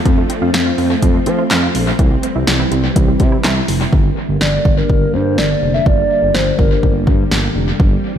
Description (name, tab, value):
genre	synth-pop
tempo	124 BPM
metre	4/4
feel	straight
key	G dorian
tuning	A4 = 440 Hz
part	soft string machine	sustained chords	0.0-8.2 s	D3 to C4	-20 LUFS	equal	ensemble chorus
part	wide unison pluck	arpeggios	0.0-3.9 s	E3 to F5	-24 LUFS	right 2 dB	auto-pan, tape echo
part	smooth gliding synth bass	bass	0.1-8.2 s	F1 to F3	-17 LUFS	equal	none
part	punchy analog drum machine	drums	0.1-7.9 s	handclaps, hi-hat, kick drum, snare drum	-16 LUFS	equal	tape echo
part	hollow clarinet-like synth lead	melody	4.4-7.0 s	Bb4 to E5	-18 LUFS	equal	chorus, tape echo
room	light reverb, digital ambience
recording	echo-heavy mix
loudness	-12 LUFS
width	side -9 dB against mid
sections	0.0-3.9 A section; 3.9-8.2 B section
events	none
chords	0.1 F; 2.0 C; 3.9 Gm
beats	| 0.06 0.54 1.02 1.51 | 1.99 2.48 2.96 3.44 | 3.93 4.41 4.89 5.38 | 5.86 6.35 6.83 7.31 | 7.80